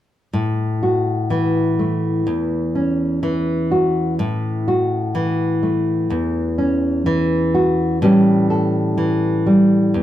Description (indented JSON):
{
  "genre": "folk, solo fingerstyle acoustic guitar",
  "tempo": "62 BPM",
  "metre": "4/4",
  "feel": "straight",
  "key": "A major",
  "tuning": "A4 = 438 Hz",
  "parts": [
    { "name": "nylon-string guitar", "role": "solo", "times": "0.3-10.0 s", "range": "E2 to A4", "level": "-16 LUFS", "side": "equal", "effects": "none" }
  ],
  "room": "light reverb",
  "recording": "none",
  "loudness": "-16 LUFS",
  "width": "side -12 dB against mid",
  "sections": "0.3-10.0 A section",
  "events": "none",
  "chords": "0.3 A; 8.0 A7",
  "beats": "| 0.33 1.30 2.27 3.23 | 4.19 5.15 6.11 7.07 | 8.03 8.99 9.95"
}